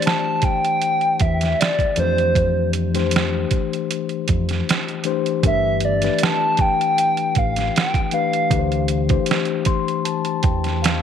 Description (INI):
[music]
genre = R&B, neo-soul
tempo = 78 BPM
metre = 4/4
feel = straight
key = D minor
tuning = A4 = 440 Hz
[part]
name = hollow clarinet-like synth lead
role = melody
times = 0.0-8.9 s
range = C5 to A5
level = -20 LUFS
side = right 1 dB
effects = chorus, tape echo
[part]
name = mellow tine electric piano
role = accompaniment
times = 0.0-11.0 s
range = E3 to C6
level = -23 LUFS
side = left 12 dB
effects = slow stereo tremolo
[part]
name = boom bap sampler-style drum kit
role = drums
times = 0.0-11.0 s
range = hi-hat, kick drum, snare drum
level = -21 LUFS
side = right 4 dB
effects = none
[part]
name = deep dub fingered electric bass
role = bass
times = 1.2-11.0 s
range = G1 to F2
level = -22 LUFS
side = right 1 dB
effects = none
[sound]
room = wet spring reverb, RT60 2.0 s, digital ambience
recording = 1960s-style stereo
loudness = -17 LUFS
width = side -8 dB against mid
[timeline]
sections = 0.0-11.0 A section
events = tine electric piano fill 9.3-11.0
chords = 0.0 D9sus4; 2.0 Fmaj9; 5.4 Gadd9; 8.5 D7sus2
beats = 0.05 0.82 1.59 | 2.35 3.12 3.89 4.66 | 5.43 6.20 6.97 7.74 | 8.51 9.28 10.05 10.82